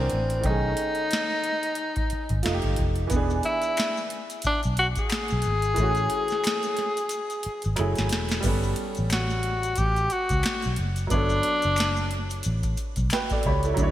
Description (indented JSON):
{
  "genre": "R&B, neo-soul",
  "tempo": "90 BPM",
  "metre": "4/4",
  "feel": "swing 58% on 16ths",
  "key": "unclear",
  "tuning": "A4 = 440 Hz",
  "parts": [
    { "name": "breathy tenor saxophone", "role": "melody", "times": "0.0-12.4 s", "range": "C4 to G#4", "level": "-26 LUFS", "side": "left 1 dB", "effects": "digital delay" },
    { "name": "clear upright piano", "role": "accompaniment", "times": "0.0-13.9 s", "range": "D#3 to B5", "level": "-31 LUFS", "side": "right 2 dB", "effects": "wide subtle chorus" },
    { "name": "vintage muted fingered electric bass", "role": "bass", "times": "0.0-13.9 s", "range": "E1 to D2", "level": "-26 LUFS", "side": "equal", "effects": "none" },
    { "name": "booming analog drum machine", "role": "drums", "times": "0.1-13.9 s", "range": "crash cymbal, hi-hat, kick drum, snare drum", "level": "-29 LUFS", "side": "equal", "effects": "gated reverb" },
    { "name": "maracas and finger snaps", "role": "percussion", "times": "3.1-13.9 s", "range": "none", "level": "-39 LUFS", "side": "left 5 dB", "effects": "none" }
  ],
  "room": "moderate lush hall reverb, RT60 2.5 s",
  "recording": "bright 1980s-style digital production",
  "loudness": "-23 LUFS",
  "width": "side -13 dB against mid",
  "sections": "0.0-8.4 A section; 8.4-13.9 B section",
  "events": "drum fill 7.1-8.4; upright piano fill 12.8-13.8",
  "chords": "0.4 B13; 2.4 F9; 3.1 E7; 5.8 Amaj7; 7.8 F#m9; 8.4 Gmaj9#11"
}